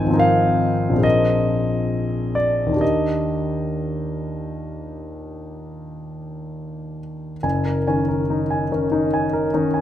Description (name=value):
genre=classical, impressionist solo piano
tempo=62-74 BPM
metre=5/4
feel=rubato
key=Eb major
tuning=A4 = 440 Hz
part: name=warm concert grand piano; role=solo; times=0.0-9.8 s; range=F#1 to Ab5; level=-19 LUFS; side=left 1 dB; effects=none
room=light reverb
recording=close, detailed microphones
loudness=-18 LUFS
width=side -11 dB against mid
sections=0.0-7.4 A section; 7.4-9.8 B section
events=none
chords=0.0 Ab69; 1.0 Bb9sus4; 2.8 Ebmaj7; 7.4 F#69